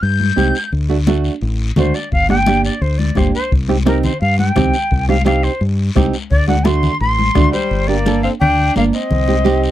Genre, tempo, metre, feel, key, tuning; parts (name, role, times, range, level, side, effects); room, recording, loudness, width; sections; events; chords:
latin, cumbia; 172 BPM; 4/4; straight; G harmonic minor; A4 = 440 Hz
jazz flute; melody; 0.0-9.7 s; Bb4 to G6; -19 LUFS; equal
fingered electric bass; bass; 0.0-9.7 s; G1 to G2; -17 LUFS; left 1 dB
congas; percussion; 0.0-9.6 s; -21 LUFS; left 4 dB
guiro; percussion; 0.0-9.7 s; -32 LUFS; left 7 dB
nylon-string guitar; accompaniment; 0.4-9.7 s; A3 to Bb4; -18 LUFS; right 6 dB
bombo; percussion; 2.1-7.5 s; -18 LUFS; left 2 dB
clear tenor saxophone; second line; 7.5-9.7 s; G3 to D4; -22 LUFS; left 6 dB
little or no reverb; dry, close 1970s-style studio recording; -13 LUFS; side -13 dB against mid
0.0-7.7 A section; 7.7-9.7 B section
flute solo 0.0-7.7
0.0 Cm; 0.7 D; 2.1 Gm; 3.5 Cm; 6.3 D7; 7.7 Gm; 9.1 Cm